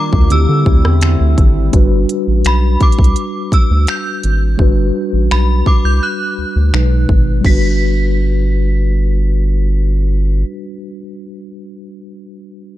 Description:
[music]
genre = contemporary R&B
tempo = 84 BPM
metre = 4/4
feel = straight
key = G major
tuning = A4 = 440 Hz
[part]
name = synth chime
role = melody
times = 0.0-10.4 s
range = B5 to B6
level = -22 LUFS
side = equal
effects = ensemble chorus
[part]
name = mellow tine electric piano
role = accompaniment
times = 0.0-12.8 s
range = B2 to B4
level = -20 LUFS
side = left 1 dB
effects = medium stereo tremolo
[part]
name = chorused pulse-width pad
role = sustained chords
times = 0.0-1.7 s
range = D3 to F4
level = -24 LUFS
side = right 1 dB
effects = none
[part]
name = round analog bass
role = bass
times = 0.1-10.4 s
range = G1 to D3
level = -13 LUFS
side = equal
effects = none
[part]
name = trap drum kit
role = drums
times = 0.1-7.6 s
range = crash cymbal, finger snaps, hi-hat, kick drum, rim click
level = -12 LUFS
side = equal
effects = none
[sound]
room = digital ambience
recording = dark, warm production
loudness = -11 LUFS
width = side -14 dB against mid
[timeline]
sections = 0.0-1.7 A section; 1.7-7.4 B section; 7.4-10.3 C section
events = none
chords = 0.3 D9sus4; 1.7 Gmaj7; 6.7 B6; 7.4 Gmaj7

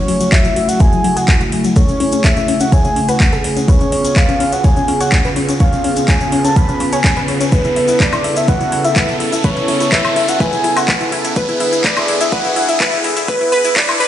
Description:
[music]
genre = progressive house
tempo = 125 BPM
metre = 4/4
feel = straight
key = F# minor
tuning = A4 = 441 Hz
[part]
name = soft octave-layered synth lead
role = melody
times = 0.0-14.1 s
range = B4 to B5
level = -18 LUFS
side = equal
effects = chorus, ping-pong delay
[part]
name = warm analog pad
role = sustained chords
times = 0.0-14.1 s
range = C#3 to A4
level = -21 LUFS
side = right 1 dB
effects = chorus, sidechain pumping
[part]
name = analog pluck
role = arpeggios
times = 0.0-14.1 s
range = F#3 to E#5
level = -20 LUFS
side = left 3 dB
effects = chorus, sidechain pumping, ping-pong delay
[part]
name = riser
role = sound effects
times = 0.0-14.1 s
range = none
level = -25 LUFS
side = equal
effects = none
[part]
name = house drum kit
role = drums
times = 0.1-14.1 s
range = handclaps, hi-hat, woodblock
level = -19 LUFS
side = equal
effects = overdrive
[part]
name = tube shaker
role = percussion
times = 0.2-14.0 s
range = none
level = -28 LUFS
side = left 4 dB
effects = none
[part]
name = electronic kick drum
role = drums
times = 0.3-13.9 s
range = none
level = -14 LUFS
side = equal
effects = none
[sound]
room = light reverb, digital ambience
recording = played on a big sound system in a bare room, stone room reverb, high-pass filter, nothing above 10.9 kHz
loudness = -12 LUFS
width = side -11 dB against mid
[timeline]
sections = 0.0-14.1 A section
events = build-up 0.0-14.1; riser 0.0-14.1; filter sweep on synth pluck 0.0-14.1; filter sweep 0.0-14.1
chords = 0.0 F#m7; 3.7 C#7; 7.5 Aadd9; 11.4 E7

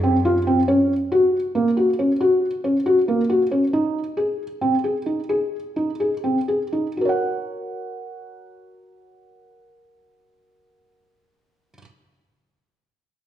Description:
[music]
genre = contemporary instrumental, chamber music in an uneven meter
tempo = 122-139 BPM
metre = 7/4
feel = straight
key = Gb lydian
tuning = A4 = 440 Hz
[part]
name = felt-muted upright piano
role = arpeggios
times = 0.0-11.8 s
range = Bb3 to Gb5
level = -19 LUFS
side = equal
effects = none
[part]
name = rich cello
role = bass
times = 0.0-0.6 s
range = Gb2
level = -27 LUFS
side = equal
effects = none
[sound]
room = wet recital hall reverb, RT60 1.4 s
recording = dark, warm production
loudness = -18 LUFS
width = side -11 dB against mid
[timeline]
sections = 0.0-7.0 A section; 7.0-10.3 B section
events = slowing down 3.3-7.0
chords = 0.0 F5/Gb; 0.7 Gb5; 3.7 Ab5; 7.0 Gb

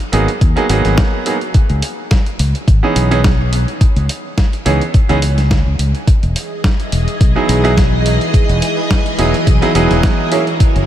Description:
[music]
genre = nu-disco, nu disco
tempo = 106 BPM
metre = 4/4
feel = swing 54% on 16ths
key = unclear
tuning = A4 = 440 Hz
[part]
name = dusty soul sampler-style drum kit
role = drums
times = 0.0-10.9 s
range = hi-hat, snare drum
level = -22 LUFS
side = right 1 dB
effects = none
[part]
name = bright baby grand piano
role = accompaniment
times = 0.1-10.4 s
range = E3 to G#4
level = -18 LUFS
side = right 3 dB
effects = low-pass filter, tape echo
[part]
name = fingered electric bass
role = bass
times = 0.1-10.9 s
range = E1 to D#2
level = -15 LUFS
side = equal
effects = none
[part]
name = electronic kick drum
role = drums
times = 0.4-10.7 s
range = none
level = -12 LUFS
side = equal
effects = none
[part]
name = string machine, full ensemble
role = sustained chords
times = 6.3-10.9 s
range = E3 to D#5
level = -18 LUFS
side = equal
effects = ensemble chorus, sidechain pumping
[sound]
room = light reverb, digital ambience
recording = none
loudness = -11 LUFS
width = side -11 dB against mid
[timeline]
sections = 0.0-10.9 A section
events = none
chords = 0.0 G#m7; 1.5 C#m7; 6.1 Emaj7; 10.3 F#7

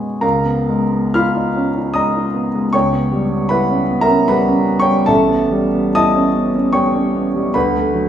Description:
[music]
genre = classical, impressionist solo piano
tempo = 62-78 BPM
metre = 3/4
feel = rubato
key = unclear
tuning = A4 = 440 Hz
[part]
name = warm concert grand piano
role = solo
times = 0.0-8.1 s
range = A1 to E#6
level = -14 LUFS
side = equal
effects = none
[sound]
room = wet recital hall reverb, RT60 1.7 s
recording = recorded in a church or concert hall, small room ambience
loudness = -13 LUFS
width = side -10 dB against mid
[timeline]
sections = 0.2-8.1 A section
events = none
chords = 0.2 C#13; 2.7 Em6/C#; 5.1 A9; 7.6 D6

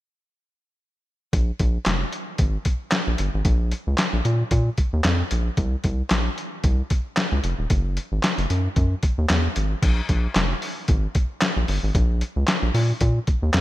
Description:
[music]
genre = early-eighties boogie funk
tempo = 113 BPM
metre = 4/4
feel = swing 56% on 16ths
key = unclear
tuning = A4 = 440 Hz
[part]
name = rubbery square bass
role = bass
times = 1.3-13.6 s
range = Eb1 to Bb2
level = -22 LUFS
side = equal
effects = none
[part]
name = lo-fi sampler-style drum kit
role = drums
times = 1.3-13.6 s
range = crash cymbal, handclaps, hi-hat, kick drum, snare drum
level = -22 LUFS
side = equal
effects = none
[sound]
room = light reverb, digital ambience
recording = none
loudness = -20 LUFS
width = side -16 dB against mid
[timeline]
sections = 1.3-9.8 A section; 9.8-13.6 B section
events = none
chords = none

